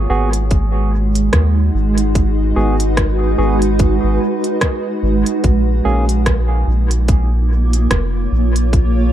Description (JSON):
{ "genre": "ambient dub", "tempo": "73 BPM", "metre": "4/4", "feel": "swing 58% on 16ths", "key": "G# dorian", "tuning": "A4 = 440 Hz", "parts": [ { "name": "granular cloud pad", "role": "sustained chords", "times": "0.0-9.1 s", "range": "G#3 to C#5", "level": "-19 LUFS", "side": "right 2 dB", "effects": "built-in reverb" }, { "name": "soft dub sub bass", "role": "bass", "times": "0.0-9.1 s", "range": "E#1 to D#2", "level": "-15 LUFS", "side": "equal", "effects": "none" }, { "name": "barky tine electric piano", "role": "stabs", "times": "0.1-6.0 s", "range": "A#3 to G#4", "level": "-24 LUFS", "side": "right 2 dB", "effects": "medium stereo tremolo, low-pass filter, dub echo" }, { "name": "organic electronic drum kit", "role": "drums", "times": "0.3-8.9 s", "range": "hi-hat, rim click", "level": "-23 LUFS", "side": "right 1 dB", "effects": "dub echo" }, { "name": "electronic kick drum", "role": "drums", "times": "0.5-8.9 s", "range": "none", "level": "-16 LUFS", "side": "equal", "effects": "none" } ], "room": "little or no reverb", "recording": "dark, warm production", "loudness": "-13 LUFS", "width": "side -11 dB against mid", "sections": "0.0-9.1 A section", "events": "none", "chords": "0.0 G#m7; 5.4 A#m7" }